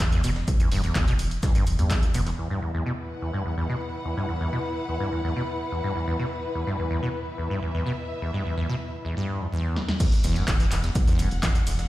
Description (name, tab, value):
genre	acid house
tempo	126 BPM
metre	4/4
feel	straight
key	E minor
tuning	A4 = 440 Hz
part	acid bass, saw	riff	0.0-11.7 s	D2 to E3	-28 LUFS	equal	tube saturation, analog chorus
part	round analog bass	bass	0.0-2.3, 10.2-11.9 s	E1 to E2	-27 LUFS	equal	sidechain pumping
part	breakbeat sampler-style drum kit	drums	0.0-2.4, 10.0-11.9 s	hi-hat, shaker, snare drum	-40 LUFS	equal	sidechain pumping on perc, high-pass filter on perc, high-pass filter on snare, sidechain pumping on hats, high-pass filter on hats, high-pass filter on room
part	electronic kick drum	drums	0.0-2.0, 10.0-11.5 s	none	-23 LUFS	equal	none
part	punchy analog drum machine	drums	0.0-2.4, 9.8-11.9 s	crash cymbal, handclaps, hi-hat, ride cymbal, snare drum	-32 LUFS	equal	low-pass filter on hats, low-pass filter on snare, low-pass filter on cymbals, low-pass filter on room
part	dark studio string section	texture	2.4-11.9 s	E4 to F#5	-33 LUFS	left 2 dB	sidechain pumping
room	light reverb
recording	played on a big sound system in a bare room, stone room reverb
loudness	-23 LUFS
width	side -16 dB against mid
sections	0.0-2.4 A section; 2.4-10.0 B section; 10.0-11.9 C section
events	filter sweep on acid bass 0.0-2.4; drum fill 9.8; drop 10.0-11.9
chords	0.0 E5; 10.0 Dadd9 (rootless)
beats	0.00 | 0.48 0.95 1.43 1.91 | 2.38 2.86 3.33 3.81 | 4.29 4.76 5.24 5.72 | 6.19 6.67 7.14 7.62 | 8.10 8.57 9.05 9.53 | 10.00 10.48 10.95 11.43